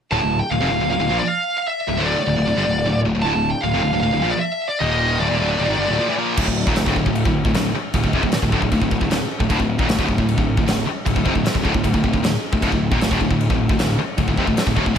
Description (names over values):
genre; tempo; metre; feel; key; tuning
heavy metal; 154 BPM; 4/4; straight; D minor; A4 = 441 Hz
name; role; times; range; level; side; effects
high-gain lead guitar; melody; 0.1-6.1 s; C5 to A5; -22 LUFS; right 1 dB; distortion, tape echo
heavy high-gain guitar; riff; 0.1-15.0 s; D2 to Bb3; -23 LUFS; left 9 dB; distortion
high-gain distorted guitar; riff; 0.1-15.0 s; D2 to Bb3; -24 LUFS; right 8 dB; distortion
fuzz picked electric bass; bass; 0.1-15.0 s; D1 to Bb1; -24 LUFS; equal; overdrive
high-gain distorted guitar; riff; 6.4-15.0 s; D2 to C3; -27 LUFS; equal; none
big rock drum kit; drums; 6.4-15.0 s; crash cymbal, kick drum, snare drum; -21 LUFS; equal; none
room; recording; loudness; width
light reverb; none; -17 LUFS; side -8 dB against mid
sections
0.1-6.4 A section; 6.4-15.0 B section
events
none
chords
0.1 Dm; 4.8 Eb5; 5.2 Dm